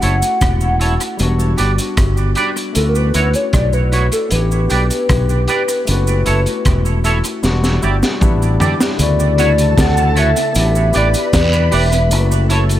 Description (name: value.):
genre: lovers rock reggae.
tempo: 77 BPM.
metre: 4/4.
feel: straight.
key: D major.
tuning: A4 = 440 Hz.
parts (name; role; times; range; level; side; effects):
hollow clarinet-like synth lead; melody; 0.0-12.5 s; A4 to F#5; -20 LUFS; left 1 dB; chorus, tape echo.
barky tine electric piano; accompaniment; 0.0-12.8 s; C#3 to G4; -22 LUFS; left 4 dB; overdrive, tape echo.
twangy electric guitar; stabs; 0.0-12.6 s; E4 to D5; -22 LUFS; right 4 dB; analog chorus, tape echo.
fingered electric bass; bass; 0.0-12.8 s; E1 to E2; -15 LUFS; equal; none.
crunchy breakbeat drum kit; drums; 0.0-12.8 s; hi-hat, kick drum, rim click, snare drum, toms; -19 LUFS; equal; tape echo.
cabasa and guiro; percussion; 0.0-12.8 s; none; -28 LUFS; right 3 dB; none.
soft string machine; second line; 9.3-12.8 s; A4 to B5; -23 LUFS; equal; ensemble chorus.
room: small room ambience.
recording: none.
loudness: -12 LUFS.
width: side -12 dB against mid.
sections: 0.0-9.0 A section; 9.0-12.8 B section.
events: drum fill 7.4-9.0.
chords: 0.0 F#m7; 1.2 Em7; 2.8 Dmaj9; 4.3 A9sus4; 5.9 F#m7; 7.4 Em7; 8.2 A7sus4; 9.0 Dmaj9; 10.6 A9sus4; 12.1 F#m7.